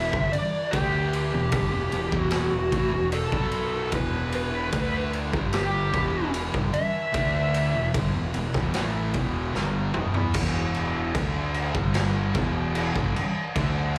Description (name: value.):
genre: stoner and doom metal.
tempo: 75 BPM.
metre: 4/4.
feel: straight.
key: E minor.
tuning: A4 = 440 Hz.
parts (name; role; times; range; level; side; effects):
fuzz lead guitar; melody; 0.0-7.9 s; G4 to E5; -30 LUFS; equal; wah, distortion, slapback echo, analog delay.
biting overdriven guitar; riff; 0.0-14.0 s; E2 to D4; -36 LUFS; equal; slapback echo.
thick fuzz guitar; riff; 0.0-14.0 s; E2 to D4; -35 LUFS; equal; none.
thick fuzz guitar; riff; 0.0-14.0 s; E2 to D4; -35 LUFS; equal; none.
fuzz fingered electric bass; bass; 0.0-14.0 s; E1 to E2; -32 LUFS; equal; overdrive.
raw garage drum kit; drums; 0.1-14.0 s; crash cymbal, kick drum, ride cymbal, snare drum, toms; -31 LUFS; equal; none.
room: light reverb.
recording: live gig heard through the venue's PA, club reverb.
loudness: -26 LUFS.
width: mono.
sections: 0.0-10.4 A section; 10.4-14.0 B section.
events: drum fill 9.6-10.4.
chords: 0.0 Em.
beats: | 0.73 1.53 2.33 3.14 | 3.94 4.74 5.54 6.34 | 7.15 7.95 8.75 9.55 | 10.36 11.16 11.96 12.77 | 13.57.